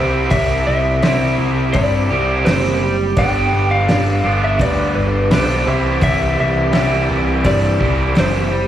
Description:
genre	classic rock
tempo	84 BPM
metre	4/4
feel	straight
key	unclear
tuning	A4 = 440 Hz
part	electric slide guitar	melody	0.0-8.7 s	B4 to G5	-21 LUFS	equal	slapback echo
part	clear upright piano	accompaniment	0.0-8.7 s	G4 to B5	-28 LUFS	left 2 dB	none
part	tonewheel organ	sustained chords	0.0-8.7 s	G3 to G4	-28 LUFS	right 1 dB	none
part	raw garage guitar	riff	0.0-8.7 s	G2 to G4	-18 LUFS	right 1 dB	overdrive, slapback echo
part	growling picked electric bass	bass	0.0-8.7 s	F#1 to G2	-19 LUFS	equal	overdrive
part	cloth-damped thuddy drum kit	drums	0.3-8.3 s	hi-hat, kick drum, snare drum	-21 LUFS	equal	none
part	cowbell	percussion	0.3-8.3 s	none	-30 LUFS	right 3 dB	none
room	light reverb, small room ambience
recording	live gig heard through the venue's PA, club reverb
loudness	-13 LUFS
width	side -11 dB against mid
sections	0.0-8.7 A section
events	none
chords	0.0 C; 3.2 G; 5.7 C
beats	| 0.33 1.04 1.75 2.47 | 3.18 3.89 4.61 5.32 | 6.03 6.74 7.45 8.16

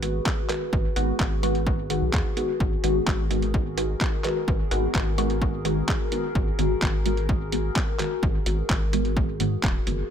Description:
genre	dub techno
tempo	128 BPM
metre	4/4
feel	straight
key	G# minor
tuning	A4 = 440 Hz
part	dark analog pad	sustained chords	0.0-10.1 s	F#4 to B4	-32 LUFS	left 2 dB	chorus, phaser, sidechain pumping
part	filtered dub chord stab	stabs	0.0-10.0 s	D#3 to F#4	-28 LUFS	equal	phaser, sidechain pumping, dub echo
part	round analog bass	bass	0.0-10.0 s	D#1 to G#2	-28 LUFS	equal	tube saturation, sidechain pumping
part	lo-fi sampler-style drum kit	drums	0.0-10.0 s	handclaps, hi-hat	-31 LUFS	right 1 dB	overdrive, dub echo
part	electronic kick drum	drums	0.3-9.7 s	none	-26 LUFS	equal	overdrive
room	digital ambience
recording	none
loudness	-22 LUFS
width	side -8 dB against mid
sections	0.0-10.1 A section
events	filter sweep on synth stab 0.0-10.1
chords	0.0 G#m7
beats	0.26 | 0.73 1.20 1.67 2.13 | 2.60 3.07 3.54 4.01 | 4.48 4.95 5.42 5.88 | 6.35 6.82 7.29 7.76 | 8.23 8.70 9.17 9.63

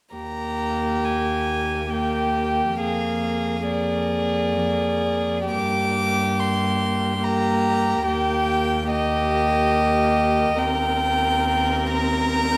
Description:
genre	classical, slow romantic movement for string quartet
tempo	60-73 BPM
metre	3/4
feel	rubato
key	Eb major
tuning	A4 = 436 Hz
part	warm viola	accompaniment	0.1-12.6 s	Bb3 to C4	-29 LUFS	equal	none
part	warm violin	melody	0.2-12.6 s	D5 to D6	-27 LUFS	equal	none
part	rich violin	second line	0.2-12.6 s	G4 to Bb4	-27 LUFS	equal	none
part	warm cello	bass	0.2-12.6 s	Eb2 to G2	-30 LUFS	equal	none
room	wet recital hall reverb, RT60 1.5 s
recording	none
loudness	-22 LUFS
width	mono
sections	0.1-12.6 A section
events	none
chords	0.1 Eb; 2.8 Bb7/F; 5.5 Gmadd11; 8.1 Eb; 10.6 Cm7/Eb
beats	| 0.15 1.04 1.90 | 2.80 3.68 4.55 | 5.51 6.39 7.22 | 8.06 8.90 9.73 | 10.58 11.44 12.30

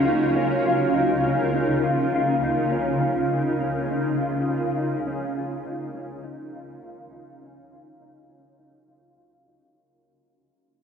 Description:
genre	dream pop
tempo	102 BPM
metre	4/4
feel	straight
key	Db major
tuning	A4 = 439 Hz
part	granular cloud pad	sustained chords	0.0-9.7 s	Db3 to Bb4	-24 LUFS	equal	built-in reverb, wide subtle chorus, low-pass filter
part	mellow electric guitar	arpeggios	0.0-9.8 s	Db4 to F4	-25 LUFS	left 1 dB	ensemble chorus, low-pass filter, diffuse ambient delay
room	wet cathedral reverb, RT60 6.2 s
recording	dreamy mix soaked in reverb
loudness	-21 LUFS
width	side -7 dB against mid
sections	0.0-9.8 A section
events	fade-out 0.0-9.8; filter sweep 0.0-9.8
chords	0.4 Db6; 2.7 Db69; 5.1 Db6; 7.4 Ebm7/Db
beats	| 0.35 0.94 1.53 2.12 | 2.71 3.29 3.88 4.47 | 5.06 5.65 6.24 6.83 | 7.41 8.00 8.59 9.18

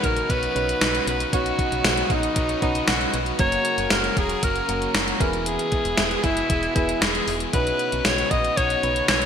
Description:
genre	1980s-style pop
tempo	116 BPM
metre	4/4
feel	straight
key	B major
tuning	A4 = 439 Hz
part	bright alto saxophone	melody	0.0-9.3 s	D#4 to D#5	-24 LUFS	equal	ping-pong delay
part	distorted electric guitar	accompaniment	0.0-9.3 s	E2 to B3	-33 LUFS	left 7 dB	overdrive, lush chorus
part	soft electric-piano-like synth keys	accompaniment	0.0-9.3 s	B2 to C#5	-29 LUFS	right 2 dB	chorus
part	lush unison pad	sustained chords	0.0-9.3 s	B2 to A#4	-31 LUFS	equal	chorus
part	solid FM bass	bass	0.0-9.3 s	E1 to B1	-30 LUFS	equal	none
part	gated 80s digital drum machine	drums	0.0-9.3 s	hi-hat, kick drum, snare drum, tambourine	-23 LUFS	equal	gated reverb, gated reverb snare
room	moderate lush hall reverb, RT60 2.3 s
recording	bright 1980s-style digital production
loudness	-20 LUFS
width	side -8 dB against mid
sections	0.0-9.3 A section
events	none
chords	0.0 Badd9; 3.4 F#; 5.2 E; 7.5 Badd9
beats	0.29 0.81 | 1.33 1.85 2.36 2.88 | 3.40 3.92 4.43 4.95 | 5.47 5.98 6.50 7.02 | 7.54 8.05 8.57 9.09

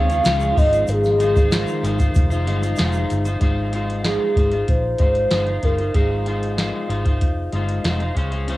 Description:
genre	indie pop, bedroom pop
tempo	95 BPM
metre	4/4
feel	straight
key	Ab major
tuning	A4 = 435 Hz
part	hollow clarinet-like synth lead	melody	0.0-6.6 s	Ab4 to F5	-21 LUFS	equal	wide subtle chorus, tape echo
part	electric guitar at the edge of break-up	accompaniment	0.0-8.6 s	Db3 to Db5	-25 LUFS	left 2 dB	wide subtle chorus, vibrato effect, cassette tape
part	soft string machine	sustained chords	0.0-3.4 s	Db3 to F4	-30 LUFS	equal	phaser, ensemble chorus, cassette tape
part	vintage muted fingered electric bass	bass	0.0-8.6 s	F1 to Eb2	-23 LUFS	equal	none
part	soft vintage rhythm box	drums	0.1-8.6 s	hi-hat, kick drum, snare drum	-20 LUFS	equal	none
part	tube shaker	percussion	0.1-3.4 s	none	-44 LUFS	right 6 dB	none
room	light reverb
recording	home recording on cassette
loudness	-17 LUFS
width	side -17 dB against mid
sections	0.0-3.4 A section; 3.4-8.6 B section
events	none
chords	0.0 Dbmaj7; 0.6 Ab6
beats	0.26 | 0.89 1.52 2.15 2.78 | 3.42 4.05 4.68 5.31 | 5.95 6.58 7.21 7.85 | 8.48

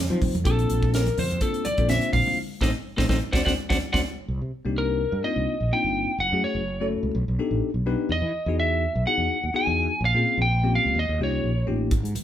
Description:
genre	electric jazz fusion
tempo	126 BPM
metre	4/4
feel	swing 55% on 16ths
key	unclear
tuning	A4 = 440 Hz
part	fretless electric bass	bass	0.0-12.1 s	F#1 to F3	-26 LUFS	equal	none
part	bell-like tine electric piano	accompaniment	0.1-11.9 s	Gb3 to C5	-28 LUFS	left 4 dB	none
part	crisp fusion drum kit	drums	0.2-4.0, 11.9-12.2 s	hi-hat, kick drum, snare drum	-26 LUFS	right 1 dB	none
part	congas	percussion	0.2-4.0, 12.2 s	none	-33 LUFS	right 2 dB	none
part	lightly driven lead guitar	melody	0.5-11.7 s	A4 to G#5	-25 LUFS	equal	none
room	moderate studio reverb, RT60 0.7 s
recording	band playing live in one room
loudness	-22 LUFS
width	side -11 dB against mid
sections	0.0-4.3 A section; 4.3-12.2 B section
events	band accent 2.4-4.3; drum fill 3.8-4.3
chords	0.5 Bbmaj7; 2.4 Adim; 3.3 D7; 4.3 Cm7; 6.2 F#m9; 7.2 B7alt; 8.1 Emaj9; 10.0 Bbm9; 11.0 Eb7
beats	| 0.46 0.94 1.41 1.89 | 2.37 2.85 3.33 3.81 | 4.29 4.76 5.24 5.72 | 6.20 6.67 7.15 7.63 | 8.11 8.58 9.06 9.53 | 10.01 10.49 10.96 11.44 | 11.91

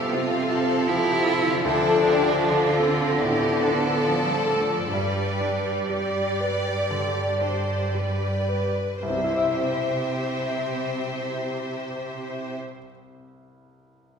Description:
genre	cinematic, emotional film score for orchestra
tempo	55-81 BPM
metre	4/4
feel	rubato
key	C major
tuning	A4 = 439 Hz
part	clear cello	melody	0.0-12.5 s	F3 to E4	-30 LUFS	right 2 dB	none
part	rich studio violin section	melody	0.0-12.6 s	D5 to F5	-34 LUFS	left 3 dB	none
part	bright symphonic violin section	second line	0.0-12.6 s	F4 to D5	-30 LUFS	left 2 dB	none
part	bright concert grand piano	accompaniment	0.0-14.2 s	C2 to E5	-29 LUFS	equal	none
part	rich symphonic viola section	accompaniment	0.0-12.5 s	F3 to D5	-29 LUFS	right 3 dB	none
part	mellow French horn section	sustained chords	0.0-12.5 s	F3 to D5	-30 LUFS	left 3 dB	none
part	concert harp	arpeggios	0.0-12.9 s	G2 to B5	-31 LUFS	left 7 dB	none
part	warm studio cello section	bass	0.0-12.5 s	G2 to D3	-29 LUFS	right 2 dB	none
room	wet recital hall reverb, RT60 1.6 s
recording	recorded in a church or concert hall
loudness	-21 LUFS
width	side -6 dB against mid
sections	0.0-9.0 A section; 9.0-13.3 B section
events	slowing down 0.1-9.0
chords	0.0 F/C; 1.6 Dm; 4.9 G; 9.0 C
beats	0.14 0.88 | 1.64 2.40 3.20 4.04 | 4.94 5.91 6.91 7.95 | 9.02 10.08 11.14 12.22

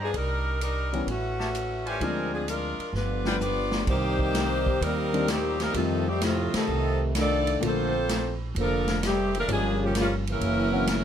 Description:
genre	jazz, big band swing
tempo	128 BPM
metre	4/4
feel	swing 68% on 8ths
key	C minor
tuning	A4 = 440 Hz
part	clear saxophone section	melody	0.0-11.0 s	Eb3 to D5	-29 LUFS	left 1 dB	none
part	clear trumpet section	stabs	0.0-3.4 s	F4 to A5	-34 LUFS	left 1 dB	none
part	upright bass	bass	0.0-11.0 s	F1 to G2	-30 LUFS	right 1 dB	none
part	swinging big-band drum kit	drums	0.1-11.0 s	crash cymbal, hi-hat, kick drum, ride cymbal, snare drum, toms	-32 LUFS	left 1 dB	none
part	clear concert grand piano	accompaniment	0.9-10.9 s	D3 to F#4	-30 LUFS	left 3 dB	none
part	warm trombone section	second line	2.9-11.0 s	A2 to A4	-30 LUFS	right 1 dB	none
room	light reverb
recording	none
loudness	-24 LUFS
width	side -9 dB against mid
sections	0.0-3.9 A section; 3.9-11.0 B section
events	drum fill 2.9-3.9; band accent 6.4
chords	0.1 Cm9; 1.1 A; 2.0 Dm7b5; 2.9 G7; 3.9 Cm7; 5.7 F7; 7.6 Bbmaj7; 9.5 Gm7b5; 10.4 F#7#11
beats	| 0.14 0.60 1.07 1.54 | 2.01 2.48 2.94 3.41 | 3.88 4.35 4.81 5.28 | 5.75 6.21 6.68 7.15 | 7.62 8.08 8.55 9.02 | 9.48 9.95 10.41 10.88

